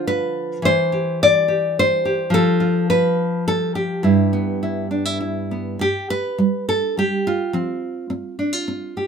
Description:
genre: folk, solo fingerstyle acoustic guitar.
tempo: 105 BPM.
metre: 3/4.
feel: rubato.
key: G mixolydian.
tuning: A4 = 440 Hz.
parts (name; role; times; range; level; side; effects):
nylon-string guitar; solo; 0.0-9.1 s; G2 to D5; -18 LUFS; equal; none.
room: light reverb.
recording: minimal, uncompressed stereo recording.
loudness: -18 LUFS.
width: side -6 dB against mid.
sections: 0.0-5.8 A section; 5.8-9.1 B section.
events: none.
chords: 0.0 Dm; 0.6 C/E; 2.3 N.C.; 4.0 G6; 5.8 N.C.; 7.5 F5.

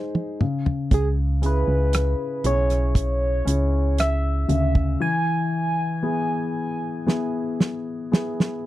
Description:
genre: pop ballad.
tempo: 58 BPM.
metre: 4/4.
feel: straight.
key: unclear.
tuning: A4 = 439 Hz.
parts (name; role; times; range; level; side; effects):
dark grand piano; accompaniment; 0.0-8.7 s; C#3 to B#4; -26 LUFS; left 3 dB; none.
damped 70s drum kit; drums; 0.1-8.6 s; hi-hat, kick drum, rim click, snare drum, toms; -21 LUFS; right 1 dB; none.
soft struck synth lead; melody; 0.9-8.1 s; G#4 to G#5; -26 LUFS; right 1 dB; chorus, slapback echo.
solid FM bass; bass; 0.9-5.0 s; B1 to D2; -21 LUFS; right 1 dB; none.
room: little or no reverb.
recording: dry, close 1970s-style studio recording.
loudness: -20 LUFS.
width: side -14 dB against mid.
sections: 0.0-8.7 A section.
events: drum fill 0.0-0.9, 7.1-8.7; break 5.0-8.7.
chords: 0.4 C#m; 5.0 E.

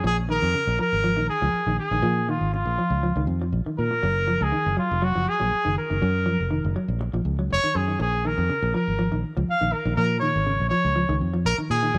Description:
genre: afrobeat.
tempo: 121 BPM.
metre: 4/4.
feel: straight.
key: unclear.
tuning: A4 = 441 Hz.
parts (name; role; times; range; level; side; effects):
clear trumpet; melody; 0.0-12.0 s; F4 to F5; -27 LUFS; equal; none.
semi-hollow electric guitar; arpeggios; 0.0-12.0 s; Bb2 to Gb3; -30 LUFS; equal; none.
fingered electric bass; bass; 0.0-12.0 s; F1 to Bb2; -28 LUFS; equal; none.
room: light reverb, small room reverb.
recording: none.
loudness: -24 LUFS.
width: mono.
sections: 0.0-12.0 A section.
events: none.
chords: 0.0 Bbm7; 4.0 Gbmaj9; 8.0 Bbm.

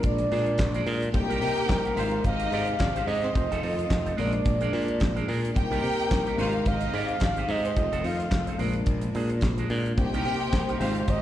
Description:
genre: disco.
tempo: 109 BPM.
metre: 4/4.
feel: swing 56% on 16ths.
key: unclear.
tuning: A4 = 440 Hz.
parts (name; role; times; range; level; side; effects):
breathy flugelhorn; melody; 0.0-11.2 s; Bb4 to F5; -30 LUFS; right 1 dB; slapback echo.
barky tine electric piano; accompaniment; 0.0-11.2 s; G3 to C5; -33 LUFS; left 4 dB; slapback echo.
electric guitar with an envelope filter; accompaniment; 0.0-11.1 s; D4 to D5; -36 LUFS; right 6 dB; slapback echo.
bright studio string section; sustained chords; 0.0-11.2 s; Bb2 to G4; -37 LUFS; left 1 dB; none.
modern bright fingered electric bass; bass; 0.0-11.2 s; F1 to C3; -29 LUFS; equal; none.
damped 70s drum kit; drums; 0.0-11.2 s; handclaps, hi-hat, kick drum, snare drum; -28 LUFS; equal; none.
warm studio violin section; second line; 1.1-11.2 s; C4 to G5; -32 LUFS; left 1 dB; slapback echo.
room: small room ambience.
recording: live gig heard through the venue's PA, recital hall reverb.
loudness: -24 LUFS.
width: side -12 dB against mid.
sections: 0.0-11.2 A section.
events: none.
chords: 0.0 Bb7; 1.1 Cm7; 2.0 Abmaj7; 3.4 F7; 4.2 Bb7; 5.6 Cm7; 6.4 Abmaj7; 7.8 F7; 8.6 Bb7; 10.0 Cm7.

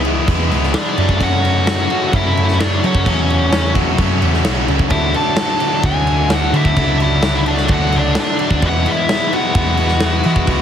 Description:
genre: quiet-loud alternative rock.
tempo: 129 BPM.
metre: 4/4.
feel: straight.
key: F# minor.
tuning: A4 = 440 Hz.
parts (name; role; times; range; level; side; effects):
cranked stack guitar; riff; 0.0-10.6 s; F#2 to G#4; -20 LUFS; left 11 dB; overdrive.
tight distorted guitar; riff; 0.0-10.6 s; D3 to F#4; -23 LUFS; right 14 dB; distortion.
hollow-body short-scale picked electric bass; bass; 0.0-10.6 s; B1 to F#3; -18 LUFS; right 1 dB; none.
big rock drum kit; drums; 0.0-10.6 s; crash cymbal, kick drum, snare drum; -19 LUFS; right 1 dB; none.
nasal lead guitar with a parked wah; melody; 0.7-10.6 s; C#4 to A5; -20 LUFS; equal; overdrive.
room: light reverb, small room ambience.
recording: heavily compressed radio sound, multiband compression.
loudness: -13 LUFS.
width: side -9 dB against mid.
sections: 0.0-10.6 A section.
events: none.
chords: 0.0 E; 1.0 F#m; 4.9 Dadd9; 8.6 Eadd9.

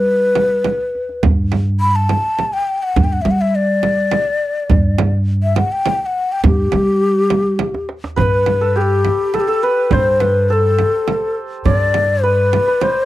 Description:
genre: Persian modal ensemble.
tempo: 104 BPM.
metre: 3/4.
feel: straight.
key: G dastgah mahur.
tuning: A4 = 442 Hz.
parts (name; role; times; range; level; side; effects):
breathy mellow ney; melody; 0.0-13.1 s; G4 to B5; -16 LUFS; left 2 dB; none.
upright bass; bass; 0.0-12.6 s; G2 to G3; -17 LUFS; equal; none.
tombak; percussion; 0.1-8.2 s; none; -18 LUFS; right 1 dB; none.
frame drum; percussion; 0.4-12.9 s; none; -21 LUFS; right 6 dB; none.
santur; second line; 8.2-13.1 s; G4 to D5; -22 LUFS; right 4 dB; tape echo.
room: studio reverb.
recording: dry, close 1970s-style studio recording.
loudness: -13 LUFS.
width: side -15 dB against mid.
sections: 0.0-8.2 A section; 8.2-13.1 B section.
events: drum fill 7.6-8.2.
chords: none.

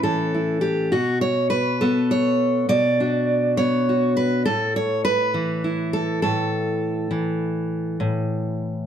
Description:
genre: folk, solo fingerstyle acoustic guitar.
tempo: 68 BPM (dotted quarters).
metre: 6/8.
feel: straight.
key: A major.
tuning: A4 = 440 Hz.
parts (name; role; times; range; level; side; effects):
fingerpicked steel-string acoustic guitar; solo; 0.0-8.9 s; A2 to D5; -19 LUFS; equal; none.
room: moderate studio reverb, RT60 0.7 s.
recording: dark, warm production.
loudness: -19 LUFS.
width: side -8 dB against mid.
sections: 0.0-8.0 A section.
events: none.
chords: 0.0 A; 0.9 Bmadd9; 4.5 A5.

